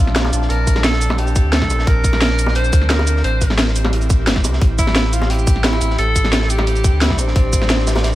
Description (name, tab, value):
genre	liquid drum and bass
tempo	175 BPM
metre	4/4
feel	straight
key	unclear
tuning	A4 = 438 Hz
part	warm tenor saxophone	melody	0.0-8.2 s	C4 to C5	-22 LUFS	equal	tape echo
part	airy breathy pad	sustained chords	0.0-8.2 s	C4 to A5	-26 LUFS	right 2 dB	chorus, sidechain pumping
part	sub bass with octave	bass	0.0-8.2 s	G1 to D2	-18 LUFS	equal	tube saturation
part	drum and bass drum kit	drums	0.1-8.1 s	hi-hat, shaker, snare drum	-20 LUFS	equal	small room ambience
part	crunchy breakbeat drum kit	drums	0.2-8.1 s	hi-hat, snare drum	-27 LUFS	equal	high-pass filter on hats, small room ambience, high-pass filter on snare, high-pass filter on room, tape echo
part	bongos	percussion	0.2-8.0 s	none	-28 LUFS	equal	tape echo
part	electronic kick drum	drums	0.7-7.6 s	none	-15 LUFS	equal	small room ambience
room	light reverb, small room ambience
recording	echo-heavy mix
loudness	-13 LUFS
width	side -15 dB against mid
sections	0.0-8.2 A section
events	none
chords	0.0 Bb; 3.2 Am7